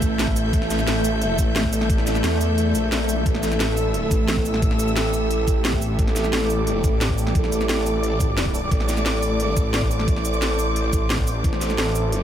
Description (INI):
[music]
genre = dark technical drum and bass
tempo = 176 BPM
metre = 4/4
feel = straight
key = A minor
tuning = A4 = 440 Hz
[part]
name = deep dark ambient pad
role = sustained chords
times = 0.0-12.2 s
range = A3 to D5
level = -28 LUFS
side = equal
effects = chorus, built-in reverb, sidechain pumping
[part]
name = snarling distorted saw bass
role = bass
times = 0.0-12.2 s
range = A1 to E2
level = -24 LUFS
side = equal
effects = distortion, sidechain pumping
[part]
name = drum and bass drum kit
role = drums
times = 0.0-12.2 s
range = cabasa, hi-hat, snare drum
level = -26 LUFS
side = equal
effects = none
[part]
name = electronic kick drum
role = drums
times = 0.0-11.5 s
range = none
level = -22 LUFS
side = equal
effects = none
[part]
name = rich symphonic string section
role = texture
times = 0.0-12.2 s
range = A3 to G6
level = -26 LUFS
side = left 1 dB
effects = sidechain pumping
[part]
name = dark brass ensemble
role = stabs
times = 3.3-12.2 s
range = A3 to A4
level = -27 LUFS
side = right 3 dB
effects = ping-pong delay
[sound]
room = light reverb, digital ambience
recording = none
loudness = -19 LUFS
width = side -10 dB against mid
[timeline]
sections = 0.0-12.2 A section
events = kick drops out 2.6-3.3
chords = 0.0 A5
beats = 0.19 | 0.53 0.87 1.22 1.56 | 1.90 2.24 2.58 2.92 | 3.26 3.60 3.94 4.28 | 4.62 4.96 5.31 5.65 | 5.99 6.33 6.67 7.01 | 7.35 7.69 8.03 8.37 | 8.71 9.06 9.40 9.74 | 10.08 10.42 10.76 11.10 | 11.44 11.78 12.12